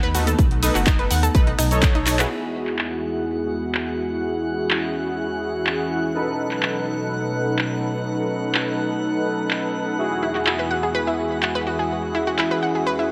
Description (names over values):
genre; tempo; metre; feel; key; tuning
progressive house; 125 BPM; 4/4; straight; E major; A4 = 439 Hz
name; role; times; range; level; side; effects
evolving wavetable pad; sustained chords; 0.0-13.1 s; E2 to F#4; -30 LUFS; equal; chorus, built-in reverb, sidechain pumping
analog pluck; arpeggios; 0.0-2.2, 10.2-13.1 s; D#4 to F#5; -27 LUFS; equal; chorus, sidechain pumping, tape echo
dark detuned saw bass; bass; 0.0-2.3 s; F#1 to D#2; -25 LUFS; equal; sidechain pumping
house drum kit; drums; 0.0-12.5 s; crash cymbal, finger snaps, handclaps, hi-hat, shaker; -27 LUFS; equal; sidechain pumping on hats, low-pass filter on hats, small room reverb, sidechain pumping on perc, low-pass filter on perc, low-pass filter on snare, sidechain pumping on cymbals, low-pass filter on cymbals
soft supersaw; stabs; 0.1-13.1 s; D#4 to C#5; -27 LUFS; equal; sidechain pumping, low-pass filter, tape echo
electronic kick drum; drums; 0.4-1.9 s; none; -20 LUFS; equal; small room reverb
drifting glass-harmonics texture; texture; 2.9-13.1 s; F#5 to F#6; -36 LUFS; equal; chorus, built-in reverb, sidechain pumping
room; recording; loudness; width
light reverb; none; -22 LUFS; mono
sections
0.0-2.3 A section; 2.3-13.1 B section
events
drum fill 2.1; filter sweep on ambient pad 2.3-13.1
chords
0.0 B7; 2.3 Eadd9; 6.1 B7; 10.0 Eadd9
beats
| 0.39 0.87 1.35 1.83 | 2.31 2.79 3.27 3.75 | 4.23 4.71 5.19 5.67 | 6.15 6.63 7.11 7.59 | 8.07 8.55 9.03 9.51 | 9.99 10.47 10.95 11.43 | 11.91 12.39 12.87